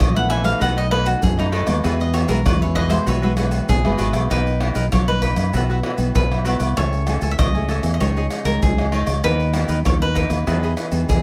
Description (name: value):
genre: samba and choro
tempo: 97 BPM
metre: 4/4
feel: straight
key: E major, B major from 4.3 s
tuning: A4 = 441 Hz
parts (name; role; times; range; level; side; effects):
- cavaquinho; melody; 0.0-11.2 s; D#4 to G#5; -28 LUFS; equal; none
- nylon-string guitar; accompaniment; 0.0-11.2 s; B2 to A#4; -28 LUFS; equal; none
- fingered electric bass; bass; 0.0-11.2 s; F#1 to F#2; -23 LUFS; equal; none
- agogo bells, egg shaker, surdo, pandeiro and tamborim; percussion; 0.0-11.2 s; none; -25 LUFS; equal; none
- cavaquinho; accompaniment; 0.1-11.2 s; D#4 to G#5; -29 LUFS; equal; none
room: little or no reverb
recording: close, detailed microphones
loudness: -19 LUFS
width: mono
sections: 0.0-4.3 A section; 4.3-11.2 B section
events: cavaquinho solo 0.0-4.3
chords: 0.0 Asus2; 0.6 B7; 1.8 Eadd9; 4.3 Bmaj7; 5.5 Esus2/B; 6.8 Amaj7/C#; 8.0 C#sus2; 9.2 Bmaj7/D#; 10.5 Emaj7